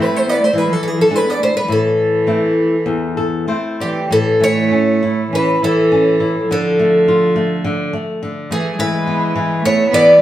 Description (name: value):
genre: fado-style ballad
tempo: 101 BPM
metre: 4/4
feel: uneven beats, rubato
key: A minor, A major from 4.1 s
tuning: A4 = 440 Hz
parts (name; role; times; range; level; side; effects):
- picked twelve-string acoustic guitar; melody; 0.0-10.2 s; G4 to D5; -15 LUFS; equal; none
- rich cello; second line; 0.0-10.2 s; E3 to B3; -20 LUFS; right 4 dB; none
- flamenco guitar; accompaniment; 0.0-10.2 s; E2 to D5; -19 LUFS; left 2 dB; none
room: wet large studio reverb, RT60 0.8 s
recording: band playing live in one room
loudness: -13 LUFS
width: side -13 dB against mid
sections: 0.0-4.1 A section; 4.1-10.2 B section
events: nylon-string guitar fill 2.8-4.1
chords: 0.0 Am/E; 0.5 E7; 1.7 Am; 4.1 A; 6.5 Dm; 8.8 E